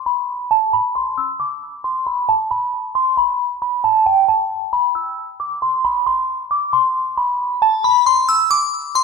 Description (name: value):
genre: hip hop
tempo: 135 BPM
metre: 4/4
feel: half-time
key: unclear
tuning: A4 = 438 Hz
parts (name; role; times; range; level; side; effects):
- glassy synth bell; solo; 0.0-9.0 s; G5 to E6; -16 LUFS; equal; chorus, phaser, low-pass filter, ping-pong delay
room: moderate concert hall reverb, RT60 1.8 s, digital ambience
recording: none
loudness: -16 LUFS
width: side -4 dB against mid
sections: 0.0-9.0 A section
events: filter sweep on synth bell 0.0-8.3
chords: none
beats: 0.29 0.73 | 1.18 1.62 2.06 2.51 | 2.95 3.40 3.84 4.29 | 4.73 5.18 5.62 6.06 | 6.51 6.95 7.40 7.84 | 8.29 8.73